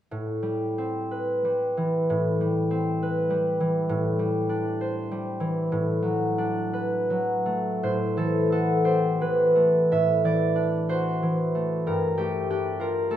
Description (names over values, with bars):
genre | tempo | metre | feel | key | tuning
classical, solo harp piece | 52-69 BPM (dotted quarters) | 6/8 | rubato | A dorian | A4 = 439 Hz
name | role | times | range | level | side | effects
concert harp | solo | 0.1-13.2 s | G2 to E5 | -22 LUFS | equal | none
room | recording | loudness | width
wet recital hall reverb, RT60 1.7 s | none | -22 LUFS | side -11 dB against mid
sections
0.1-7.8 A section; 7.8-13.2 B section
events
none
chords
0.1 Am9; 3.9 Am11; 5.7 Bm7/A; 7.8 Am9; 9.9 D13/A; 11.9 Gm9